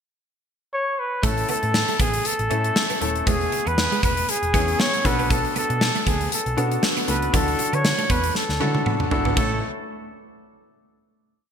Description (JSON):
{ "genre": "1980s-style pop", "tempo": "118 BPM", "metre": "4/4", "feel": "swing 55% on 16ths", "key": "A major", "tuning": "A4 = 438 Hz", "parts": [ { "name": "clear flugelhorn", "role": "melody", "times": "0.7-9.6 s", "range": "G#4 to C#5", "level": "-25 LUFS", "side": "equal", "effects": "digital delay" }, { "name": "clear baby grand piano", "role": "accompaniment", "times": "1.2-9.6 s", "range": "A3 to A4", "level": "-28 LUFS", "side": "left 2 dB", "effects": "none" }, { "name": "twelve-string electric guitar", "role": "riff", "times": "1.2-9.5 s", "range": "F#3 to C#4", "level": "-31 LUFS", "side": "right 5 dB", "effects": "ensemble chorus, digital delay" }, { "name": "hollow-body short-scale picked electric bass", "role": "bass", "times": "1.2-9.6 s", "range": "D#1 to D3", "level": "-26 LUFS", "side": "equal", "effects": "none" }, { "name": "gated 80s drum kit", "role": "drums", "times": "1.2-9.5 s", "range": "crash cymbal, hi-hat, kick drum, snare drum, toms", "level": "-23 LUFS", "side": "equal", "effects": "gated reverb" } ], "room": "moderate lush hall reverb, RT60 1.9 s, small room ambience", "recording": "bright 1980s-style digital production", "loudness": "-19 LUFS", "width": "side -7 dB against mid", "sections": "0.0-1.2 pickup bar; 1.2-9.4 verse; 9.4-11.4 final chord", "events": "drum fill 8.4-9.4", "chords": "0.0 N.C.; 1.2 A; 3.3 E6; 5.0 Bm7; 7.3 Dadd9; 9.4 N.C." }